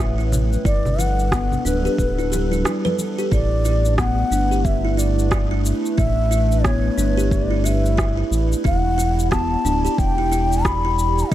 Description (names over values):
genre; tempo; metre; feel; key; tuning
organic downtempo; 90 BPM; 4/4; swing 60% on 16ths; unclear; A4 = 440 Hz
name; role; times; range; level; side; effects
mellow hollow bass bansuri; melody; 0.0-11.3 s; B4 to B5; -24 LUFS; left 1 dB; tape echo
warbly tape-like pad; sustained chords; 0.0-11.3 s; G3 to D5; -27 LUFS; right 1 dB; chorus, built-in reverb, sidechain pumping
buzzing kalimba; arpeggios; 0.0-11.3 s; B3 to B4; -26 LUFS; equal; tape echo
round analog bass; bass; 0.0-11.3 s; D1 to A1; -20 LUFS; equal; none
electronic shaker and rim click; drums; 0.0-11.3 s; none; -28 LUFS; right 1 dB; studio reverb
congas; percussion; 0.3-3.1 s; none; -28 LUFS; left 1 dB; none
electronic kick drum; drums; 0.7-11.3 s; none; -22 LUFS; equal; studio reverb
room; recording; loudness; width
light reverb, small room ambience; dark, warm production; -17 LUFS; side -13 dB against mid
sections
0.0-3.3 A section; 3.3-11.3 B section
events
none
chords
0.0 Aadd9; 0.6 Gmaj7; 3.3 A7sus4; 8.6 Em11